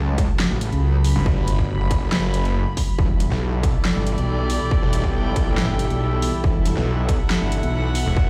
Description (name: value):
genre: heavy wobble dubstep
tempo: 139 BPM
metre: 4/4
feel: half-time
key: unclear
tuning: A4 = 439 Hz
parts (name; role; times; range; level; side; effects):
- lush unison pad; sustained chords; 0.0-8.3 s; B2 to A4; -30 LUFS; equal; chorus, sidechain pumping
- snarling distorted saw bass; bass; 0.0-8.3 s; E1 to C#2; -24 LUFS; equal; distortion, overdrive
- dark studio string section; texture; 0.0-8.3 s; E4 to B5; -31 LUFS; equal; sidechain pumping
- dubstep drum kit; drums; 0.2-8.0 s; handclaps, hi-hat, snare drum; -29 LUFS; equal; none
- electronic kick drum; drums; 0.2-8.3 s; none; -24 LUFS; equal; distortion
- metallic wobble bass; bass; 0.5-8.0 s; E1 to C#2; -23 LUFS; equal; distortion, chorus, overdrive
room: little or no reverb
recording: played on a big sound system in a bare room, stone room reverb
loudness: -21 LUFS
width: mono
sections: 0.0-8.3 A section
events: none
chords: 0.0 F#m; 3.0 Em